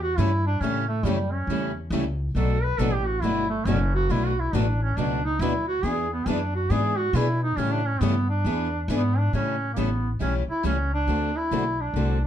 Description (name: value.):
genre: acoustic string swing (jazz manouche).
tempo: 138 BPM.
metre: 4/4.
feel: swing 63% on 8ths.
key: A mixolydian.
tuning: A4 = 440 Hz.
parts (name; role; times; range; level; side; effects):
clear duduk; melody; 0.0-12.3 s; G3 to B4; -27 LUFS; right 2 dB; plate reverb.
upright bass; bass; 0.0-12.3 s; F#1 to B2; -26 LUFS; equal; none.
picked acoustic archtop guitar; accompaniment; 0.2-12.2 s; B2 to A4; -29 LUFS; left 7 dB; none.
picked steel-string acoustic guitar; accompaniment; 0.2-12.2 s; B2 to B4; -31 LUFS; right 6 dB; none.
room: moderate studio reverb, RT60 0.5 s.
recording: dark, warm production.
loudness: -22 LUFS.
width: side -10 dB against mid.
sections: 0.0-9.3 A section; 9.3-12.3 B section.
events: duduk solo 0.0-9.3.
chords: 0.0 A7; 2.4 Bm7; 5.8 E7; 7.6 A7; 8.5 E7; 9.3 A7; 11.1 D7.